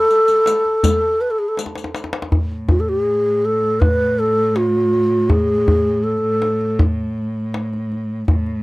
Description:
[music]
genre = Persian modal ensemble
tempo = 80 BPM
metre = 4/4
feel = straight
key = A avaz esfahan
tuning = A4 = 440 Hz
[part]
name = breathy mellow low ney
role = melody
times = 0.0-6.8 s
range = F4+44c to B4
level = -16 LUFS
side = equal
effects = none
[part]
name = santur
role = second line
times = 0.0-2.3 s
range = A4 to D5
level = -33 LUFS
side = right 3 dB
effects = none
[part]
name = riq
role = percussion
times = 0.1-2.0 s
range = none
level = -26 LUFS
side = left 6 dB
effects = none
[part]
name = tombak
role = percussion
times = 0.1-8.6 s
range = none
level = -18 LUFS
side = equal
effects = none
[part]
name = rich cello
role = drone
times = 2.3-8.6 s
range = A2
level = -22 LUFS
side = equal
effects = none
[sound]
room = light reverb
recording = dry, close 1970s-style studio recording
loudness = -15 LUFS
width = side -22 dB against mid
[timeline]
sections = 0.0-2.3 A section; 2.3-8.6 B section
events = drum fill 1.6-2.3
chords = none

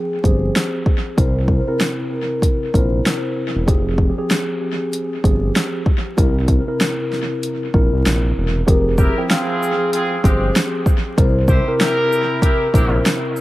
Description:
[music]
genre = hip hop, boom-bap hip-hop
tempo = 96 BPM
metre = 4/4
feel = swing 59% on 16ths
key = F harmonic minor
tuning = A4 = 439 Hz
[part]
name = vibraphone with soft mallets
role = melody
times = 0.0-3.0, 8.7-13.0 s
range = Ab4 to C5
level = -23 LUFS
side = left 1 dB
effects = high-pass filter, low-pass filter, tape echo
[part]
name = mellow tine electric piano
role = accompaniment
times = 0.0-13.4 s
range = C3 to G5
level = -22 LUFS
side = left 1 dB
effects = medium stereo tremolo, cassette tape, high-pass filter, low-pass filter, tape echo
[part]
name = smooth synth bass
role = bass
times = 0.2-13.0 s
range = E1 to C2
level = -19 LUFS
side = equal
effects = none
[part]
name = deep house drum kit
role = drums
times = 0.2-13.4 s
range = hi-hat, kick drum, shaker, snare drum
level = -18 LUFS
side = equal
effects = tape echo
[part]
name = warm horn section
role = stabs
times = 9.0-13.0 s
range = Ab3 to C5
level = -23 LUFS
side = right 1 dB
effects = high-pass filter, low-pass filter, tape echo
[sound]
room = light reverb, digital ambience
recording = echo-heavy mix, vinyl crackle, lossy compression artefacts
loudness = -15 LUFS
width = side -17 dB against mid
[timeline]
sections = 0.0-8.7 A section; 8.7-13.4 B section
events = none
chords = 0.0 Fmadd9; 1.2 C7; 3.7 Fmadd9; 6.2 C7; 8.7 Fmadd9; 11.2 C7

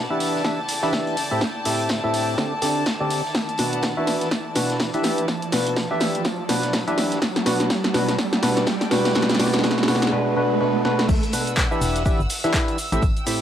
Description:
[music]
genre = piano house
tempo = 124 BPM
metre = 4/4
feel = swing 58% on 16ths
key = unclear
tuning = A4 = 439 Hz
[part]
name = warm studio violin section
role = sustained chords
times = 0.0-13.4 s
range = A5 to E6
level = -32 LUFS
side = left 1 dB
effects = sidechain pumping, cassette tape
[part]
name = percussive organ stab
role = riff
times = 0.0-13.4 s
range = A2 to E5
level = -23 LUFS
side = equal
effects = lush chorus, sidechain pumping, cassette tape, analog delay
[part]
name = riser and swell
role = sound effects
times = 0.2-11.1 s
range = none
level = -28 LUFS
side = right 3 dB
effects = none
[part]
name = clear studio string section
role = texture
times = 0.0-13.4 s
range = B3 to G5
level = -34 LUFS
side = equal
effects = sidechain pumping, cassette tape
[part]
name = punchy analog drum machine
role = drums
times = 0.2-13.4 s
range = cabasa, crash cymbal, handclaps, hi-hat, snare drum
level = -24 LUFS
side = equal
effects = overdrive, cassette tape
[part]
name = vintage drum kit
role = drums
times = 0.2-13.4 s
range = hi-hat, snare drum, tambourine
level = -36 LUFS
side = equal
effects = sidechain pumping on hats, high-pass filter on hats, cassette tape, high-pass filter on snare, sidechain pumping on perc, high-pass filter on perc, high-pass filter on room
[part]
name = electronic kick drum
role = drums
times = 0.4-13.1 s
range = none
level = -25 LUFS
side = equal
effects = high-pass filter on kick, cassette tape, high-pass filter on room
[part]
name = organ-like FM bass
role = bass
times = 11.1-13.1 s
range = E1 to B1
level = -24 LUFS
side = equal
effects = sidechain pumping
[sound]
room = wet small room reverb, RT60 0.5 s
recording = home recording on cassette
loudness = -19 LUFS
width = side -10 dB against mid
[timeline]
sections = 0.0-11.1 A section; 11.1-13.4 B section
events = build-up 0.0-11.1; drum fill 0.0-10.1, 10.8; filter sweep on synth stab 0.0-11.1; riser 0.2-11.1; swell 10.1-11.1; drop 11.1-13.4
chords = 0.2 Em7; 1.2 Am7; 2.4 D7sus4; 3.3 Bm; 4.1 Em7; 7.2 Bm; 11.8 Em7; 12.8 Am7

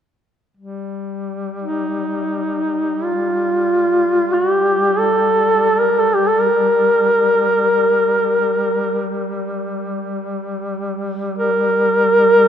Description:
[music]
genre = caucasian folk, Caucasian lament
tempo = free time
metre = none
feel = none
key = G minor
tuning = A4 = 441 Hz
[part]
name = warm duduk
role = drone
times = 0.6-12.5 s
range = G3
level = -24 LUFS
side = left 1 dB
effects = none
[part]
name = mellow duduk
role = melody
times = 1.6-12.5 s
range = Eb4 to Bb4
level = -14 LUFS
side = equal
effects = none
[sound]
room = wet cathedral reverb, RT60 4.4 s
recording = minimal, uncompressed stereo recording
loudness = -15 LUFS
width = side -9 dB against mid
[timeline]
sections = 0.6-12.5 A section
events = none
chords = none

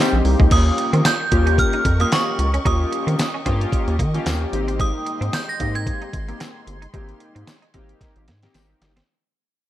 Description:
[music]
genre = early-eighties boogie funk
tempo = 112 BPM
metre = 4/4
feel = swing 56% on 16ths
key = Ab major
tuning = A4 = 440 Hz
[part]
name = chorused polysynth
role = accompaniment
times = 0.0-8.9 s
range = Bb3 to G4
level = -25 LUFS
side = left 2 dB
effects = none
[part]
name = warm studio string section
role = sustained chords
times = 0.0-9.0 s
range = Ab3 to Db6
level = -35 LUFS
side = left 2 dB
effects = none
[part]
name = semi-hollow electric guitar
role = riff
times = 0.0-9.0 s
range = Ab3 to Eb4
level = -32 LUFS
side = right 3 dB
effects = ensemble chorus
[part]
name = rubbery square bass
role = bass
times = 0.1-9.0 s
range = G1 to Eb3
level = -20 LUFS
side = equal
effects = none
[part]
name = detuned 8-bit digital drum machine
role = drums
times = 0.2-9.1 s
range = crash cymbal, handclaps, hi-hat, kick drum, snare drum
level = -21 LUFS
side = equal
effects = gated reverb
[part]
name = metallic FM bell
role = melody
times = 0.5-8.5 s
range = Db6 to Bb6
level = -24 LUFS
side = right 3 dB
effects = chorus
[part]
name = tambourine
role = percussion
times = 1.1-8.7 s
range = none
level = -34 LUFS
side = left 8 dB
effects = none
[sound]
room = digital ambience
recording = none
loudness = -17 LUFS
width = side -13 dB against mid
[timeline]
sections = 0.5-9.1 A section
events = fade-out 0.5-9.1; drum fill 8.0-9.1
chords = 0.0 Abmaj7; 0.5 Eb7; 4.5 Abmaj7

